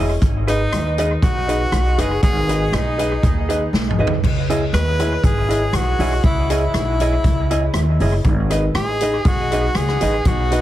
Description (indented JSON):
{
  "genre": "ska",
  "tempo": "120 BPM",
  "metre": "4/4",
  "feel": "straight",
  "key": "unclear",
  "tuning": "A4 = 439 Hz",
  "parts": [
    { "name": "hollow-body jazz guitar", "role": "accompaniment", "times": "0.0-10.6 s", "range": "E4 to D#5", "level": "-26 LUFS", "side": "right 2 dB", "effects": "dub echo" },
    { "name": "dark upright piano", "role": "stabs", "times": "0.0-10.6 s", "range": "D#4 to D#5", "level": "-26 LUFS", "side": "left 1 dB", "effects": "dub echo" },
    { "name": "upright bass", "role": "bass", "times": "0.0-10.6 s", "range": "E1 to D#2", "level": "-20 LUFS", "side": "equal", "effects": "none" },
    { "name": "swinging big-band drum kit", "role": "drums", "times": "0.2-10.6 s", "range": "crash cymbal, hi-hat, kick drum, rim click, snare drum, toms", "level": "-20 LUFS", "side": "equal", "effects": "none" },
    { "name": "bright tenor saxophone", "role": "melody", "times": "0.5-10.6 s", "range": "D#4 to B4", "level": "-23 LUFS", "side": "equal", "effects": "dub echo" }
  ],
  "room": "light reverb",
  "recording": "heavily compressed radio sound, multiband compression",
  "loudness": "-16 LUFS",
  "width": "side -13 dB against mid",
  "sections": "0.0-10.6 A section",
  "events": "drum fill 3.7-4.2",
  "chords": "0.2 G#m; 4.2 C#madd9; 8.2 G#m"
}